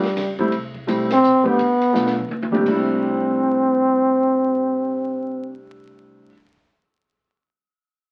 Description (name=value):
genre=jazz, small-group swing and bop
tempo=168 BPM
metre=3/4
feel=swing 63% on 8ths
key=C major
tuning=A4 = 438 Hz
part: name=warm trombone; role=melody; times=0.0-5.6 s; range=G3 to C4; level=-20 LUFS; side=equal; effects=none
part: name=warm baby grand piano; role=accompaniment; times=0.0-6.3 s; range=B#2 to G4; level=-26 LUFS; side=equal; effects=none
part: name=upright bass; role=bass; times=0.0-6.3 s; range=G1 to D2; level=-43 LUFS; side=equal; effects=none
part: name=compact cocktail drum kit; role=drums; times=0.0-2.8 s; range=crash cymbal, hi-hat, kick drum, ride cymbal, snare drum, toms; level=-32 LUFS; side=equal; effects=none
room=moderate studio reverb, RT60 0.6 s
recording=very old 78 rpm record, vinyl crackle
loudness=-20 LUFS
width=mono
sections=0.0-2.7 A section; 2.7-4.8 B section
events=drum fill 1.9-2.7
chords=0.2 A7#9/C#; 0.5 Am9; 1.2 Bbmaj13; 1.6 G7; 2.3 A7#9/C#; 2.7 C69